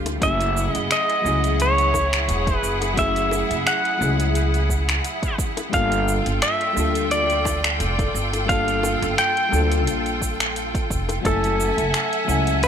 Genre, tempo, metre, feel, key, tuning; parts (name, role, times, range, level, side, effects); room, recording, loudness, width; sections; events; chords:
sunset chillout; 87 BPM; 4/4; swing 54% on 16ths; A4 = 440 Hz
mellow FM electric piano; accompaniment; 0.0-12.7 s; F#3 to G#5; -28 LUFS; moving between left 7 dB and right 4 dB; chorus, auto-pan, digital delay
clear symphonic string section; sustained chords; 0.0-12.7 s; E4 to G#5; -26 LUFS; right 1 dB
upright bass; bass; 0.0-12.7 s; E1 to D2; -24 LUFS; equal
deep house drum kit; drums; 0.1-12.7 s; cabasa, finger snaps, hi-hat; -27 LUFS; equal; overdrive
bongos; percussion; 0.1-11.2 s; -32 LUFS; left 6 dB
pedal steel guitar; melody; 0.2-12.7 s; A4 to G5; -23 LUFS; equal; tape echo
electronic kick drum; drums; 0.2-11.4 s; -26 LUFS; equal; overdrive
light reverb, digital ambience; -18 LUFS; side -8 dB against mid
0.0-12.7 A section
0.2 F#m9; 5.7 Gm9; 11.2 F#m9